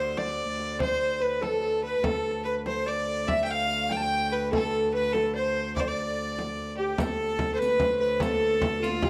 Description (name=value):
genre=medieval dance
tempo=97 BPM (dotted quarters)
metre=6/8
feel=straight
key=D dorian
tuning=A4 = 440 Hz
part: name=clear fiddle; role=melody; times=0.0-9.1 s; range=F4 to G5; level=-30 LUFS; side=equal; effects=slapback echo
part: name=Celtic harp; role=second line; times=0.0-9.1 s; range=F4 to G5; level=-36 LUFS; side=equal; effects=none
part: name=bright reedy tenor recorder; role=second line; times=0.0-9.1 s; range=F4 to A5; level=-35 LUFS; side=equal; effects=none
part: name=clear viola da gamba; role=drone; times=0.0-9.1 s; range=D2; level=-37 LUFS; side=equal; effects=none
part: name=frame drum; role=percussion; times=0.2-9.1 s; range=none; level=-34 LUFS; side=equal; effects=none
part: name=riq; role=percussion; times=7.0-9.1 s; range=none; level=-41 LUFS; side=equal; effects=none
room=light reverb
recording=dry, close 1970s-style studio recording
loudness=-27 LUFS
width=mono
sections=0.0-7.0 A section; 7.0-9.1 B section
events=none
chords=none